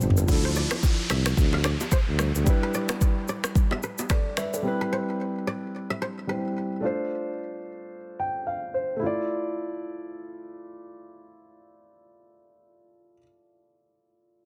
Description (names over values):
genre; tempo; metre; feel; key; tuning
afrobeats; 110 BPM; 4/4; swing 58% on 16ths; D dorian; A4 = 438 Hz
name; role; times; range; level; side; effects
dark grand piano; accompaniment; 0.0-14.5 s; F3 to G5; -32 LUFS; equal; none
mellow tuba; bass; 0.0-2.5 s; G1 to D2; -28 LUFS; equal; none
afro-pop drum kit; drums; 0.0-4.6 s; finger snaps, kick drum, rim click, shaker, toms; -26 LUFS; equal; soft clipping on snare
congas and bongos; percussion; 0.0-4.6 s; none; -38 LUFS; equal; none
downlifter; sound effects; 0.3-4.6 s; none; -37 LUFS; equal; none
kora; riff; 0.5-6.5 s; B4 to F5; -36 LUFS; equal; digital delay
room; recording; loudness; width
small room ambience; dense, heavily limited modern master; -27 LUFS; mono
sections
0.3-9.0 A section; 9.0-13.4 B section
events
drum fill 0.0; grand piano fill 7.9-9.0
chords
0.3 Dmadd9; 2.5 Em7; 4.6 Cmaj7; 6.8 F6; 9.0 Dmadd9